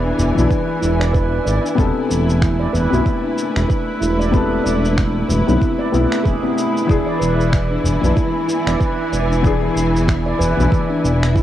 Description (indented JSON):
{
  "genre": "organic downtempo",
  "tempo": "94 BPM",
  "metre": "4/4",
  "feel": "swing 59% on 16ths",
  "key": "unclear",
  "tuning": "A4 = 440 Hz",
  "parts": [
    { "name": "felt-muted upright piano", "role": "accompaniment", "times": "0.0-11.4 s", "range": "C3 to A4", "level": "-22 LUFS", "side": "left 6 dB", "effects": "sidechain pumping, cassette tape, analog delay, plate reverb" },
    { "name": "rich studio string section", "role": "sustained chords", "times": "0.0-11.4 s", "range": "E3 to G#5", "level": "-24 LUFS", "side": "equal", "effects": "sidechain pumping, cassette tape, plate reverb" },
    { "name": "handpan", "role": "arpeggios", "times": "0.0-11.4 s", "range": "D4 to D5", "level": "-21 LUFS", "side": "right 3 dB", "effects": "low-pass filter, cassette tape, analog delay, plate reverb" },
    { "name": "smooth synth bass", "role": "bass", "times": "0.0-11.4 s", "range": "E1 to B1", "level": "-18 LUFS", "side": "equal", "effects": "sidechain pumping" },
    { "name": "electronic cabasa and finger snaps", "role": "drums", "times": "0.2-11.4 s", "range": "none", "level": "-28 LUFS", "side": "equal", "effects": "cassette tape" },
    { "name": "udu", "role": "percussion", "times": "0.2-10.7 s", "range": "none", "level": "-25 LUFS", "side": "left 2 dB", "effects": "none" },
    { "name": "electronic kick drum", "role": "drums", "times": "0.5-11.4 s", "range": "none", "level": "-19 LUFS", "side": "equal", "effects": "cassette tape" }
  ],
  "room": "light reverb",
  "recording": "home recording on cassette",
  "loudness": "-15 LUFS",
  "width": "side -12 dB against mid",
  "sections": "0.0-11.4 A section",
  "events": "none",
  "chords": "0.0 E7; 1.8 Amadd9/E; 6.9 E7",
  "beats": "0.50 1.14 | 1.78 2.42 3.06 3.69 | 4.33 4.97 5.61 6.25 | 6.88 7.52 8.16 8.80 | 9.44 10.08 10.71 11.35"
}